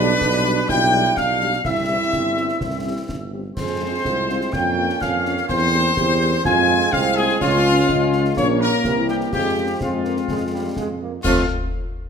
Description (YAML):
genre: military-style march for wind band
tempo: 125 BPM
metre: 2/4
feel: straight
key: F minor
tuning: A4 = 445 Hz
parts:
  - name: warm trumpet section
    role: melody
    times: 0.0-11.4 s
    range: F4 to Ab5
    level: -23 LUFS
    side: left 2 dB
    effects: none
  - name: mellow woodwind section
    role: second line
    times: 0.0-11.4 s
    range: F4 to Ab5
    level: -26 LUFS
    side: left 2 dB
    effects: none
  - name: warm euphonium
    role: second line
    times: 0.0-11.0 s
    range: Ab3 to Ab4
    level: -26 LUFS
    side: right 5 dB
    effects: none
  - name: wooden piccolo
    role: second line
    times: 0.0-11.5 s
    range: F5 to Ab6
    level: -27 LUFS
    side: left 4 dB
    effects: none
  - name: dark French horn section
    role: accompaniment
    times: 0.0-11.4 s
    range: G3 to G4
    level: -26 LUFS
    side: left 6 dB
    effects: none
  - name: clear trombone section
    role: sustained chords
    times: 0.0-11.4 s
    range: E3 to D4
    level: -29 LUFS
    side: right 4 dB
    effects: none
  - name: mellow tuba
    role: bass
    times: 0.0-11.4 s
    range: G1 to F2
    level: -24 LUFS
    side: right 4 dB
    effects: none
  - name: concert snare drum, concert bass drum and clash cymbals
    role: drums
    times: 0.2-11.5 s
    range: none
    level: -30 LUFS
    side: left 1 dB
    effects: none
room: wet recital hall reverb, RT60 1.5 s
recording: none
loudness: -17 LUFS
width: side -6 dB against mid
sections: 0.0-11.2 A section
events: none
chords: 0.0 G7/B; 1.7 C; 3.6 Fm; 4.5 Bbm/F; 5.5 C7/E; 6.5 Fm; 7.4 Db; 8.4 Bbm; 8.8 C7; 9.3 Fm; 11.2 F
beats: 0.21 | 0.69 1.17 | 1.65 2.13 | 2.61 3.09 | 3.57 4.05 | 4.53 5.01 | 5.49 5.97 | 6.45 6.93 | 7.41 7.89 | 8.37 8.85 | 9.33 9.81 | 10.29 10.77 | 11.25